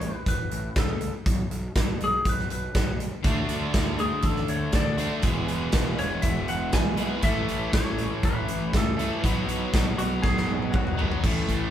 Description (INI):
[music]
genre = classic rock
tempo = 120 BPM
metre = 4/4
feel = straight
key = unclear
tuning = A4 = 442 Hz
[part]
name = clean lap steel guitar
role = melody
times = 0.0-11.1 s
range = F#4 to G#5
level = -30 LUFS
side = left 1 dB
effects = none
[part]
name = fuzz picked electric bass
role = bass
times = 0.0-11.7 s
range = E1 to D2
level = -32 LUFS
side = equal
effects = overdrive
[part]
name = big rock drum kit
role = drums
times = 0.0-11.6 s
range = crash cymbal, hi-hat, kick drum, snare drum, toms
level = -26 LUFS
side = equal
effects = none
[part]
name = picked steel-string acoustic guitar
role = accompaniment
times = 3.2-11.7 s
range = E2 to A4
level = -37 LUFS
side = right 2 dB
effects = none
[part]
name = distorted electric guitar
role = riff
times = 3.2-11.7 s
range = E2 to D4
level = -31 LUFS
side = left 5 dB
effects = distortion
[part]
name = distorted electric guitar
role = riff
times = 3.2-11.7 s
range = E2 to A4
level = -32 LUFS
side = right 5 dB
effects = distortion
[part]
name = tonewheel organ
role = sustained chords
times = 3.3-11.7 s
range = E3 to C#5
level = -42 LUFS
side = left 1 dB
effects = none
[sound]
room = wet studio reverb, RT60 0.6 s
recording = band playing live in one room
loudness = -23 LUFS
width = side -10 dB against mid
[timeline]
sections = 0.0-11.2 A section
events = drum fill 10.2-11.2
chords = 0.0 A; 1.3 N.C.; 3.2 D; 5.2 E; 7.2 A; 9.2 B